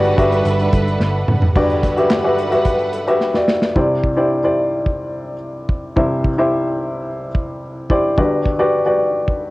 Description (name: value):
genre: piano-driven pop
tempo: 109 BPM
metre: 4/4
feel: straight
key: unclear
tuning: A4 = 441 Hz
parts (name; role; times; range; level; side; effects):
- dark upright piano; accompaniment; 0.0-9.5 s; G1 to E5; -17 LUFS; left 1 dB; none
- warm studio string section; sustained chords; 0.0-3.7 s; G2 to F#5; -22 LUFS; right 2 dB; none
- vintage muted picked electric bass; bass; 0.0-1.5 s; F#1 to G1; -19 LUFS; equal; none
- modern studio drum kit; drums; 0.0-9.4 s; crash cymbal, handclaps, hi-hat, kick drum, snare drum, toms; -19 LUFS; equal; none
room: light reverb, studio ambience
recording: home recording on cassette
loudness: -15 LUFS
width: side -19 dB against mid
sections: 0.0-1.6 A section; 1.6-3.8 B section; 3.8-9.5 C section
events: drum fill 1.0-1.6, 3.2-3.8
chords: 0.0 Gmaj7; 3.8 Cadd9; 8.2 Gmaj7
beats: 0.46 1.01 | 1.56 2.11 2.66 3.21 | 3.76 4.32 4.87 5.42 | 5.97 6.52 7.07 7.63 | 8.18 8.73 9.28